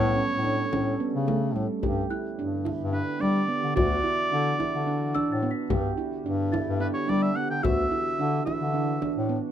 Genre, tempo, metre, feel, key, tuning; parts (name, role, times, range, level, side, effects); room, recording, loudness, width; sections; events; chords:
contemporary instrumental, chamber music in an uneven meter; 217 BPM (eighths); 7/8; straight; D major; A4 = 438 Hz
clear oboe; melody; 0.0-9.3 s; B4 to G5; -29 LUFS; right 1 dB
warbly tape-like pad; sustained chords; 0.0-9.5 s; D3 to A4; -35 LUFS; left 2 dB; chorus, built-in reverb
handpan; arpeggios; 0.0-9.5 s; G3 to G4; -29 LUFS; right 5 dB
warm bass clarinet; bass; 0.0-9.4 s; D2 to G3; -28 LUFS; left 3 dB
frame drum; percussion; 0.5-9.3 s; -32 LUFS; left 3 dB
worn celesta; texture; 2.1-8.6 s; E6 to B6; -37 LUFS; equal
light reverb; close, detailed microphones; -24 LUFS; side -10 dB against mid
0.0-1.8 A section; 1.8-9.5 B section
0.0 A7; 1.8 G; 3.8 Dadd9; 5.7 G; 7.6 Dadd9